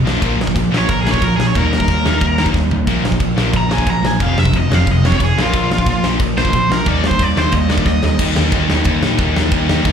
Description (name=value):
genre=punk rock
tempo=181 BPM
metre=4/4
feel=straight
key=unclear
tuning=A4 = 440 Hz
part: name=crunchy overdriven guitar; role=riff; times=0.0-9.9 s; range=F2 to Eb4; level=-20 LUFS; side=left 10 dB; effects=slapback echo
part: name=sludgy distorted guitar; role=riff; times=0.0-9.9 s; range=F2 to G4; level=-21 LUFS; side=right 11 dB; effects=overdrive
part: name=overdriven picked electric bass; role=bass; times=0.0-9.9 s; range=F1 to Bb2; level=-19 LUFS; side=equal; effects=none
part: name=big rock drum kit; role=drums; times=0.1-9.9 s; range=crash cymbal, kick drum, ride cymbal, snare drum, toms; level=-18 LUFS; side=equal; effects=none
part: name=overdriven electric guitar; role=melody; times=0.8-8.2 s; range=F4 to Bb5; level=-19 LUFS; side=right 1 dB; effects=slapback echo
room=small room reverb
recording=live gig heard through the venue's PA, club reverb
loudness=-13 LUFS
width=side -7 dB against mid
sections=0.0-8.2 A section; 8.2-9.9 B section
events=overdriven electric guitar solo 0.0-8.2; drum fill 2.5-2.9, 7.9-8.2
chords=0.1 Bb5; 1.6 Eb; 2.9 Bb5; 4.2 F5; 5.4 Bb5; 6.9 Eb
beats=| 0.22 0.55 0.89 1.22 | 1.55 1.88 2.21 2.55 | 2.88 3.21 3.54 3.88 | 4.21 4.54 4.87 5.20 | 5.54 5.87 6.20 6.53 | 6.86 7.20 7.53 7.86 | 8.19 8.52 8.86 9.19 | 9.52 9.85